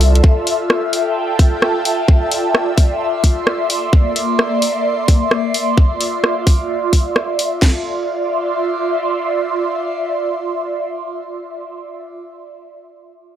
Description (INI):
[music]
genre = UK garage, two-step garage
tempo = 130 BPM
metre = 4/4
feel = swing 64% on 16ths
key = D minor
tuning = A4 = 440 Hz
[part]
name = soft string machine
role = sustained chords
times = 0.0-7.6 s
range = A4 to A5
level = -29 LUFS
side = left 1 dB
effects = phaser, ensemble chorus, sidechain pumping
[part]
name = garage drum kit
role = drums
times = 0.0-7.5 s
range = hi-hat, rim click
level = -18 LUFS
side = equal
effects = studio reverb
[part]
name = airy breathy pad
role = texture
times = 0.0-12.1 s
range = Bb3 to C6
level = -18 LUFS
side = right 1 dB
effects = chorus, phaser, sidechain pumping
[part]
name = garage drum kit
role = drums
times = 0.2-7.8 s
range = crash cymbal, kick drum, snare drum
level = -11 LUFS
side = equal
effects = studio reverb
[sound]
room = light reverb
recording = dry, gritty hardware recording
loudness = -14 LUFS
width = side -10 dB against mid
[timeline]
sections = 0.0-7.6 A section; 7.6-11.3 B section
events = none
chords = 0.2 Fmaj9; 7.6 Dm9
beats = | 0.24 0.70 1.16 1.62 | 2.08 2.54 3.01 3.47 | 3.93 4.39 4.85 5.31 | 5.78 6.24 6.70 7.16 | 7.62 8.08 8.54 9.01 | 9.47 9.93 10.39 10.85